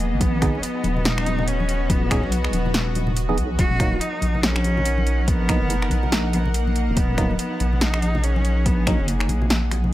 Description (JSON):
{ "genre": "deep dubstep", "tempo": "142 BPM", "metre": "4/4", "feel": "swing 59% on 16ths, half-time", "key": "unclear", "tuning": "A4 = 439 Hz", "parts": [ { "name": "clear cello", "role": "melody", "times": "0.0-9.9 s", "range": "A#3 to F#4", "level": "-28 LUFS", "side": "equal", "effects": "vintage 12-bit sampler grit, dub echo" }, { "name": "bowed-like drone", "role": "sustained chords", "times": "0.0-9.9 s", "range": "B3 to F#5", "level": "-30 LUFS", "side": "left 1 dB", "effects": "built-in reverb" }, { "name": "deep soft wobble bass", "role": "bass", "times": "0.0-9.9 s", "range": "D#1 to B1", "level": "-22 LUFS", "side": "equal", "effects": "chorus" }, { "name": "deep house drum kit", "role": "drums", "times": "0.0-9.8 s", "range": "finger snaps, hi-hat, snare drum", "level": "-25 LUFS", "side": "equal", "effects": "overdrive" }, { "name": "electronic kick drum", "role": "drums", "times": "0.2-9.0 s", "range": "none", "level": "-22 LUFS", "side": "equal", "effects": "overdrive" }, { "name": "congas and bongos", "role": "percussion", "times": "0.2-9.9 s", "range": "none", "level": "-29 LUFS", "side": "left 2 dB", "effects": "none" }, { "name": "percussive organ stab", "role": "stabs", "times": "0.4-9.0 s", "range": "F#3 to G#4", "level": "-30 LUFS", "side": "right 2 dB", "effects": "chorus, dub echo" } ], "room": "little or no reverb", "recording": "none", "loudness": "-19 LUFS", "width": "side -15 dB against mid", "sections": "0.0-9.9 A section", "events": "none", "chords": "0.0 G#m; 3.6 D#m" }